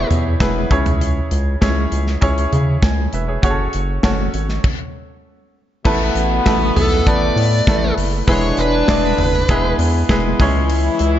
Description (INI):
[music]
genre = piano-driven pop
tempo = 99 BPM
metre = 4/4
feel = straight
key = A major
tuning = A4 = 441 Hz
[part]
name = dark smooth lead guitar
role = melody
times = 0.0-0.1, 6.8-9.8 s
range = A4 to D5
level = -22 LUFS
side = equal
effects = overdrive, slapback echo
[part]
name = bright grand piano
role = accompaniment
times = 0.0-11.2 s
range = A2 to G#5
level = -20 LUFS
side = equal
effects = slapback echo
[part]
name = round analog bass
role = bass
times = 0.0-11.2 s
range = E1 to C#3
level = -19 LUFS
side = equal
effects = none
[part]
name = modern studio drum kit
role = drums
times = 0.1-11.1 s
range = crash cymbal, hi-hat, kick drum, snare drum, toms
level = -19 LUFS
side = equal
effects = none
[part]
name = warm French horn section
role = second line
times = 5.9-11.2 s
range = B2 to E4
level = -22 LUFS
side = left 2 dB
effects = slapback echo
[sound]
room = moderate lush hall reverb, RT60 1.8 s, small room ambience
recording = big arena sound, nothing above 7.6 kHz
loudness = -14 LUFS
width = side -11 dB against mid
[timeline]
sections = 0.0-5.9 A section; 5.9-11.2 B section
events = stop 4.6-5.9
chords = 0.0 E; 0.7 C#m; 3.4 F#m; 5.9 Asus2; 8.3 E; 10.4 C#m